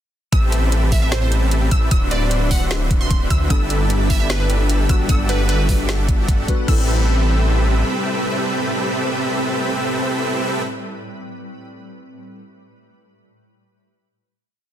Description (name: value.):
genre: future bass.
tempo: 151 BPM.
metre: 4/4.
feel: half-time.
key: A dorian.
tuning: A4 = 438 Hz.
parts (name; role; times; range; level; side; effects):
shimmering ambient pad; sustained chords; 1.5-10.6 s; A2 to B5; -31 LUFS; equal; chorus, built-in reverb, sidechain pumping.
wide unison pluck; arpeggios; 0.3-10.7 s; E6; -30 LUFS; right 1 dB; sidechain pumping.
dense compressed supersaw; riff; 0.3-10.6 s; C4 to E5; -22 LUFS; right 1 dB; sidechain pumping, tape echo.
wide detuned saw bass; bass; 0.3-7.8 s; D1 to D2; -18 LUFS; equal; chorus, sidechain pumping.
electronic kick drum; drums; 0.3-6.8 s; none; -17 LUFS; equal; overdrive.
trap drum kit; drums; 0.3-6.8 s; crash cymbal, hi-hat, snare drum; -27 LUFS; equal; none.
glassy wavetable pluck; melody; 0.9-5.8 s; B4 to C6; -27 LUFS; right 2 dB; chorus, sidechain pumping, tape echo.
glassy digital keys; accompaniment; 3.5-12.4 s; G3 to F#5; -29 LUFS; left 3 dB; chorus, sidechain pumping, tape echo.
room: little or no reverb.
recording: dense, heavily limited modern master.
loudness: -16 LUFS.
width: side -11 dB against mid.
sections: 0.3-6.7 drop; 6.7-9.9 final chord.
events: drop 0.3-6.7.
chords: 0.3 Am9; 1.9 D13; 3.5 G69; 4.9 Em11/G; 6.7 Am9.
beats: | 0.33 0.72 1.12 1.52 | 1.91 2.31 2.71 3.11 | 3.50 3.90 4.30 4.70 | 5.09 5.49 5.89 6.29 | 6.68 7.08 7.48 7.87 | 8.27 8.67 9.07 9.46.